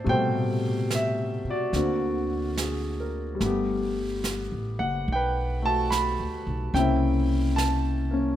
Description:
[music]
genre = jazz ballad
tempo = 72 BPM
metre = 4/4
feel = swing 66% on 8ths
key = unclear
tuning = A4 = 440 Hz
[part]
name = warm concert grand piano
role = accompaniment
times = 0.0-8.4 s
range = B2 to B5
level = -26 LUFS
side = left 1 dB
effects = none
[part]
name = upright bass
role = bass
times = 0.0-8.4 s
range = F#1 to A2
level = -28 LUFS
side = right 1 dB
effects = none
[part]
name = jazz brush drum kit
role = drums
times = 0.1-8.4 s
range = brushed snare drum, hi-hat, snare drum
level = -35 LUFS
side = right 4 dB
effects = none
[sound]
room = light reverb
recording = none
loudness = -24 LUFS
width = side -11 dB against mid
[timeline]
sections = 0.0-8.4 A section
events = none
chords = 0.1 Am9; 1.7 Daug7; 3.4 Gmaj9; 6.7 C7b9

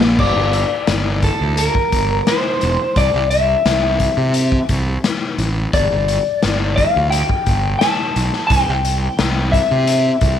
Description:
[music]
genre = psychedelic rock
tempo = 87 BPM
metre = 4/4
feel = straight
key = G dorian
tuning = A4 = 440 Hz
[part]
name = fuzz fingered electric bass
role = bass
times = 0.0-10.4 s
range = E1 to C3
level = -18 LUFS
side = right 1 dB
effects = overdrive
[part]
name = raw garage drum kit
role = drums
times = 0.0-10.4 s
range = crash cymbal, hi-hat, kick drum, snare drum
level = -20 LUFS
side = left 2 dB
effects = none
[part]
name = electric slide guitar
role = melody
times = 0.2-10.4 s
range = A4 to A5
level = -18 LUFS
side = left 2 dB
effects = slapback echo
[sound]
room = light reverb, small room ambience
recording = 1960s-style stereo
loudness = -14 LUFS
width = side -9 dB against mid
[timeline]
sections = 0.2-10.4 A section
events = drum fill 0.0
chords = 0.2 Gm; 3.0 C; 5.7 G5; 8.5 C

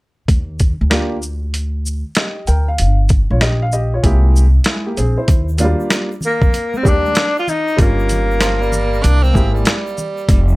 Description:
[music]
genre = hip hop, jazz-hop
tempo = 96 BPM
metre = 4/4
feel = swing 66% on 16ths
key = Eb major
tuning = A4 = 440 Hz
[part]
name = upright bass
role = bass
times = 0.3-10.6 s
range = F1 to F2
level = -15 LUFS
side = equal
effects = none
[part]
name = boom bap sampler-style drum kit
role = drums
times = 0.3-10.5 s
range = hi-hat, kick drum, shaker, snare drum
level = -16 LUFS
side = equal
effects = none
[part]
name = warm upright piano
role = accompaniment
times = 0.9-9.8 s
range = Gb3 to G5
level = -21 LUFS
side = equal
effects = plate reverb
[part]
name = egg shaker and congas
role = percussion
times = 5.3-10.6 s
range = none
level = -31 LUFS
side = left 1 dB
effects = none
[part]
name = breathy tenor saxophone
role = melody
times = 6.3-9.7 s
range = Bb3 to F4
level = -19 LUFS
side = left 1 dB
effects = plate reverb, analog delay
[part]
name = breathy tenor saxophone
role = second line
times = 8.4-10.6 s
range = F3 to D4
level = -22 LUFS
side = right 3 dB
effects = plate reverb
[sound]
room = little or no reverb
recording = none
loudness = -13 LUFS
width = side -21 dB against mid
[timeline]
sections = 0.3-5.3 A section; 5.3-10.6 B section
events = none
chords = 0.3 Ebmaj9; 2.8 Gm7b5; 4.0 C7b13; 5.3 Ebmaj9; 7.8 Gm7b5; 9.0 C7b13

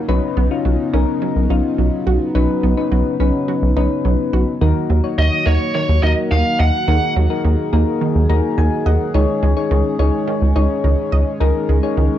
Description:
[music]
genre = pop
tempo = 106 BPM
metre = 4/4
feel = straight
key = unclear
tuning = A4 = 442 Hz
[part]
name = chorused pulse-width pad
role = sustained chords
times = 0.0-12.2 s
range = C#3 to A#4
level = -23 LUFS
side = right 1 dB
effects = cassette tape
[part]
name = soft electric-piano-like synth keys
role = accompaniment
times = 0.1-12.2 s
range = C#4 to A#5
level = -21 LUFS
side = left 8 dB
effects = chorus, cassette tape
[part]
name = wide unison pluck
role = arpeggios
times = 0.1-12.2 s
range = D#3 to D#5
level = -25 LUFS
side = right 9 dB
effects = cassette tape, tape echo
[part]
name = rubbery square bass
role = bass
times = 0.1-12.1 s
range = B1 to D#2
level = -16 LUFS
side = right 1 dB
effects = none
[part]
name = bluesy overdriven lead guitar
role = melody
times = 5.2-7.1 s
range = C#5 to F#5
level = -20 LUFS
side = right 1 dB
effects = distortion, cassette tape, tape echo
[sound]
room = moderate small room reverb, RT60 0.5 s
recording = home recording on cassette, nothing above 8.0 kHz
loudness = -14 LUFS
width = side -11 dB against mid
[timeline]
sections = 0.0-12.2 A section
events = synth keys fill 8.0-9.1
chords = 0.1 Badd9; 4.6 D#m; 9.1 C#sus2

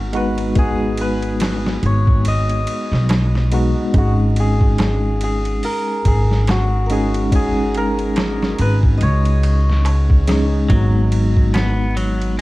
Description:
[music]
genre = trip hop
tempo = 71 BPM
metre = 4/4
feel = swing 58% on 16ths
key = unclear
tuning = A4 = 438 Hz
[part]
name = santur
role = melody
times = 0.0-11.6 s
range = F#4 to D#5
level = -24 LUFS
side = left 1 dB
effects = tape echo
[part]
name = barky tine electric piano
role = accompaniment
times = 0.0-12.4 s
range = G#3 to G#4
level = -22 LUFS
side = equal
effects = fast stereo tremolo, harmonic tremolo, tape echo
[part]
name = upright bass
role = bass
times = 0.0-12.4 s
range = G#1 to C#2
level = -17 LUFS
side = equal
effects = tube saturation
[part]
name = trip hop sampler-style drum kit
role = drums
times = 0.1-12.4 s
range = hi-hat, kick drum, ride cymbal, snare drum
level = -20 LUFS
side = equal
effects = none
[part]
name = darbuka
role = percussion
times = 1.4-11.7 s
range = none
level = -31 LUFS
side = right 3 dB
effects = none
[part]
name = clean electric guitar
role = arpeggios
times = 10.7-12.4 s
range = F#3 to B3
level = -24 LUFS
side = left 1 dB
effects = tape echo
[sound]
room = studio reverb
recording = dark, warm production, vinyl crackle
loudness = -14 LUFS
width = side -18 dB against mid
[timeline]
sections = 0.0-12.4 A section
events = none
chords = 0.0 G#m7; 3.9 C#sus2/G#; 10.7 G#m7

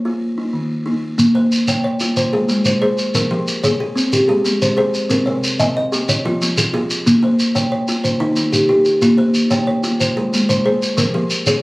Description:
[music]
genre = southern african traditional, mbira-style interlocking cycle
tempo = 123 BPM (dotted quarters)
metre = 12/8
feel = straight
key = Bb dorian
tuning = A4 = 440 Hz
[part]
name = buzzing kalimba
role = arpeggios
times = 0.0-11.6 s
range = Eb3 to Eb5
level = -17 LUFS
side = equal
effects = none
[part]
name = shekere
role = percussion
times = 1.2-11.6 s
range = none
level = -20 LUFS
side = equal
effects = none
[part]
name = kalimba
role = arpeggios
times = 1.4-11.6 s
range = C3 to Ab5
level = -19 LUFS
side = equal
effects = none
[sound]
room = little or no reverb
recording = recorded on a phone in the room, studio reverb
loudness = -14 LUFS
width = side -22 dB against mid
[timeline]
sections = 0.0-1.2 A section; 1.2-11.6 A section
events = none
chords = 0.2 N.C.; 1.2 Bbm; 2.2 Ab; 3.2 Fm; 4.1 Ab; 5.1 Cm; 6.1 Fm; 7.1 Bbm; 8.0 Eb; 9.0 Bbm; 10.0 Ab; 11.0 Fm

